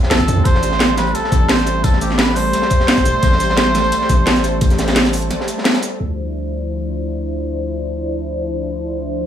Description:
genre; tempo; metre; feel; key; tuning
liquid drum and bass; 173 BPM; 4/4; straight; D minor; A4 = 440 Hz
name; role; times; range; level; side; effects
lush unison pad; sustained chords; 0.0-9.3 s; F3 to C5; -22 LUFS; equal; chorus, sidechain pumping
crunchy breakbeat drum kit; drums; 0.0-5.9 s; hi-hat, snare drum; -24 LUFS; left 1 dB; high-pass filter on hats, high-pass filter on snare, high-pass filter on room
trumpet with cup mute; melody; 0.1-5.7 s; G4 to C5; -20 LUFS; right 1 dB; tape echo
long sustained 808-style bass; bass; 0.1-9.3 s; E1 to F2; -20 LUFS; equal; none
drum and bass drum kit; drums; 0.1-9.0 s; crash cymbal, hi-hat, shaker, snare drum; -17 LUFS; equal; none
electronic kick drum; drums; 0.2-4.7 s; none; -15 LUFS; equal; none
room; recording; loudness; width
light reverb, small room ambience; low-pass filter, studio reverb; -14 LUFS; side -9 dB against mid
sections
0.0-6.0 A section; 6.0-9.3 B section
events
drop 0.0-6.0; break 5.3-6.0; filter sweep 6.0-9.3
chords
0.5 Am7; 6.0 Dm9

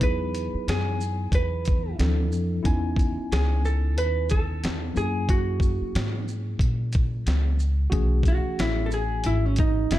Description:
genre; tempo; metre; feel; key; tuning
hip hop, jazz-hop; 91 BPM; 4/4; swing 58% on 16ths; unclear; A4 = 442 Hz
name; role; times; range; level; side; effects
vintage hollow-body jazz guitar; melody; 0.0-10.0 s; C#4 to B4; -29 LUFS; right 1 dB; slapback echo
mellow tine electric piano; accompaniment; 0.0-10.0 s; E3 to G#5; -32 LUFS; left 2 dB; medium stereo tremolo
upright bass; bass; 0.0-10.0 s; F#1 to A#2; -25 LUFS; equal; none
dusty soul sampler-style drum kit; drums; 0.0-10.0 s; hi-hat, kick drum, shaker, snare drum; -26 LUFS; equal; none
room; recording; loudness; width
little or no reverb; none; -22 LUFS; side -14 dB against mid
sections
0.0-7.9 A section; 7.9-10.0 B section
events
hollow-body jazz guitar solo 7.9-10.0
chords
0.0 Emaj7; 2.0 Dm9; 2.6 C#m9; 5.0 F#9; 7.9 B13sus4

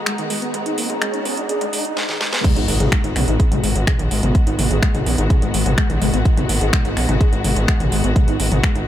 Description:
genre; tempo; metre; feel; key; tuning
melodic techno; 126 BPM; 4/4; straight; G# minor; A4 = 442 Hz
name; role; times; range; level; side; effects
dark studio string section; sustained chords; 0.0-8.9 s; D#3 to F#4; -27 LUFS; left 2 dB; sidechain pumping
riser and impact; sound effects; 0.0-4.3 s; none; -29 LUFS; right 1 dB; none
granular cloud pad; texture; 0.0-2.0 s; G#4 to A#5; -30 LUFS; right 1 dB; built-in reverb, sidechain pumping
soft round pluck; arpeggios; 0.1-8.8 s; D#3 to G#4; -24 LUFS; left 2 dB; lush chorus, sidechain pumping, digital delay
house drum kit; drums; 0.1-8.8 s; crash cymbal, finger snaps, hi-hat, snare drum, toms; -22 LUFS; equal; sidechain pumping on hats, high-pass filter on hats, sidechain pumping on toms, high-pass filter on toms, high-pass filter on snare, sidechain pumping on cymbals, high-pass filter on cymbals, high-pass filter on room
electronic kick drum; drums; 2.4-8.7 s; none; -17 LUFS; equal; none
gritty driven synth bass; bass; 2.6-8.9 s; G#1 to A#1; -20 LUFS; equal; sidechain pumping
room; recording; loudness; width
little or no reverb; high-pass filter; -16 LUFS; side -12 dB against mid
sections
0.0-2.4 A section; 2.4-8.9 B section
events
build-up 0.0-2.4; riser 0.0-2.0; filter sweep on synth arpeggio sound 0.0-2.4; drum fill 2.0-2.4; drop 2.4-8.9; impact 2.4-4.3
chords
0.0 G#m7

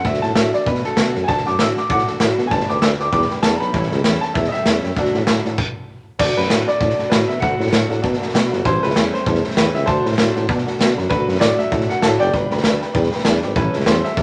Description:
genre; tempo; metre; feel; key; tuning
rockabilly; 196 BPM; 4/4; swing 58% on 8ths; D major; A4 = 439 Hz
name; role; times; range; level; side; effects
clear upright piano; melody; 0.0-14.2 s; A4 to E6; -24 LUFS; equal; none
picked steel-string acoustic guitar; accompaniment; 0.0-14.2 s; A2 to B4; -27 LUFS; equal; none
warm tuba; bass; 0.0-14.2 s; F#1 to B2; -24 LUFS; equal; none
raw garage drum kit; drums; 0.0-14.2 s; crash cymbal, hi-hat, kick drum, snare drum; -22 LUFS; equal; none
honky-tonk upright piano; accompaniment; 1.3-14.2 s; C#5 to D6; -34 LUFS; equal; none
room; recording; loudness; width
moderate large studio reverb, RT60 1.4 s; none; -18 LUFS; mono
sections
0.0-6.2 A section; 6.2-14.2 B section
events
stop 5.6-6.2; upright piano solo 6.2-14.2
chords
0.0 D; 2.5 G; 3.7 A7; 5.0 D; 8.7 A7; 9.9 D; 12.3 G; 13.6 A7

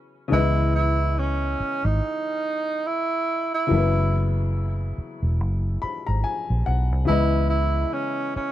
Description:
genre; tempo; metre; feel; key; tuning
R&B; 71 BPM; 4/4; swing 59% on 16ths; C# minor; A4 = 440 Hz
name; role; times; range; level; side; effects
clear upright piano; accompaniment; 0.0-8.5 s; C#3 to B5; -27 LUFS; left 6 dB; none
warm tenor saxophone; melody; 0.3-8.5 s; C#4 to E4; -25 LUFS; right 3 dB; tape echo
vintage muted fingered electric bass; bass; 0.3-8.4 s; E1 to C#2; -22 LUFS; equal; none
room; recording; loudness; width
little or no reverb; dry, close 1970s-style studio recording; -21 LUFS; side -13 dB against mid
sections
0.0-8.5 A section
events
upright piano fill 5.4-7.1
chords
0.3 C#m9; 3.7 F#7sus4; 7.1 C#m9

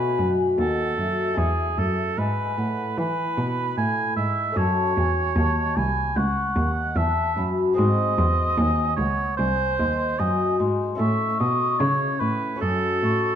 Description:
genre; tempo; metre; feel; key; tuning
classical, baroque-style sonata movement with continuo; 75 BPM; 4/4; straight; unclear; A4 = 440 Hz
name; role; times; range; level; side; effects
mellow hollow baroque flute; melody; 0.0-13.4 s; E5 to D#6; -29 LUFS; left 6 dB; none
warm oboe; second line; 0.0-13.4 s; G#4 to G#5; -26 LUFS; right 4 dB; none
lute; accompaniment; 0.0-13.4 s; D#2 to A4; -28 LUFS; left 3 dB; none
rich cello; bass; 0.0-13.4 s; B#1 to E3; -24 LUFS; equal; none
room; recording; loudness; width
wet recital hall reverb, RT60 1.7 s; dark, warm production; -20 LUFS; side -9 dB against mid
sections
0.0-13.4 A section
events
none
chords
0.0 B7; 1.4 E; 4.6 F#m; 7.8 G#7; 11.0 A; 12.6 F#m

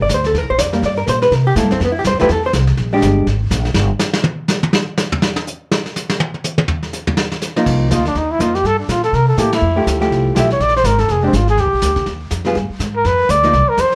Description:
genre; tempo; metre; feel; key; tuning
jazz, small-group swing and bop; 246 BPM; 4/4; swing 59% on 8ths; unclear; A4 = 440 Hz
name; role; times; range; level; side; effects
hollow-body jazz guitar; accompaniment; 0.0-3.3, 7.6-13.5 s; F3 to D5; -18 LUFS; equal; none
upright bass; bass; 0.0-3.9, 7.7-13.9 s; F1 to C3; -20 LUFS; equal; none
vintage brush drum kit; drums; 0.1-13.9 s; brushed snare drum, crash cymbal, hi-hat, kick drum, ride cymbal, snare drum, toms; -22 LUFS; equal; none
breathy trumpet; melody; 7.9-13.9 s; C4 to E5; -18 LUFS; equal; plate reverb
room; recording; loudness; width
moderate club reverb, RT60 0.6 s; none; -16 LUFS; mono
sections
0.0-7.7 A section; 7.7-13.9 B section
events
drum solo 3.8-7.7; band accent 9.5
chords
0.0 C9sus4; 0.8 Gm; 1.3 C6; 1.8 Fmaj9; 2.8 Bb6; 3.8 N.C.; 7.2 F7sus4; 7.7 Cm11; 8.6 Gm; 9.1 C6; 9.6 Fmaj9; 10.6 Bb5; 11.6 Eb; 12.6 G7b9

